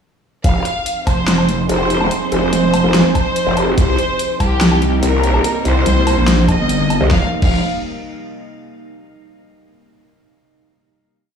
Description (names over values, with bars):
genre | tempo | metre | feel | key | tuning
heavy wobble dubstep | 144 BPM | 4/4 | half-time | F minor | A4 = 440 Hz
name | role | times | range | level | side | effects
warm symphonic violin section | melody | 0.4-7.6 s | G4 to F5 | -20 LUFS | equal | dub echo
evolving wavetable pad | sustained chords | 1.3-7.3 s | C3 to Ab4 | -23 LUFS | right 3 dB | chorus, built-in reverb, sidechain pumping
growl bass | bass | 0.4-7.6 s | F1 to C2 | -16 LUFS | equal | chorus, overdrive
dubstep drum kit | drums | 0.4-7.5 s | crash cymbal, hi-hat, snare drum, woodblock | -19 LUFS | left 1 dB | none
electronic kick drum | drums | 0.4-7.5 s | none | -16 LUFS | equal | none
pulsing pluck wobble bass | bass | 1.1-7.0 s | F1 to C2 | -15 LUFS | equal | chorus, overdrive
room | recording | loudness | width
little or no reverb | played on a big sound system in a bare room, stone room reverb, studio reverb | -13 LUFS | side -7 dB against mid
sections
0.4-7.1 drop; 7.1-8.8 final chord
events
drop 0.4-7.1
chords
0.4 Fm7; 3.8 Cm7; 7.1 Fm7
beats
| 0.44 0.86 1.28 1.69 | 2.11 2.53 2.94 3.36 | 3.78 4.19 4.61 5.03 | 5.44 5.86 6.28 6.69 | 7.11 7.53